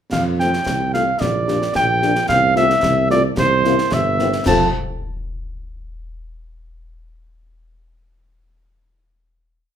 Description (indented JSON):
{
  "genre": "military-style march for wind band",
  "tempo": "111 BPM",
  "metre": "2/4",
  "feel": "straight",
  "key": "F major",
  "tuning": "A4 = 440 Hz",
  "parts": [
    { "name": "warm cornet", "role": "melody", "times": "0.1-4.7 s", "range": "C5 to A5", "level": "-17 LUFS", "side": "right 1 dB", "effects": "none" },
    { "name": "mellow tuba", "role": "bass", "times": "0.1-4.7 s", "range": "G1 to F2", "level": "-21 LUFS", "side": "right 4 dB", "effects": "none" },
    { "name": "concert snare drum, clash cymbals and concert bass drum", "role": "drums", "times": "0.1-4.8 s", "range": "none", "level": "-25 LUFS", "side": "left 2 dB", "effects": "none" },
    { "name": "dark French horn section", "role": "accompaniment", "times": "0.4-4.7 s", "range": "A3 to G4", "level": "-23 LUFS", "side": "left 6 dB", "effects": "none" }
  ],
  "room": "moderate large studio reverb, RT60 0.9 s",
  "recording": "none",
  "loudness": "-15 LUFS",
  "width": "side -9 dB against mid",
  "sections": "0.1-4.5 A section; 4.5-5.5 final chord",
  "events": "none",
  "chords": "0.1 F; 1.2 Gm/Bb; 2.3 F/C; 3.4 C7; 4.5 F"
}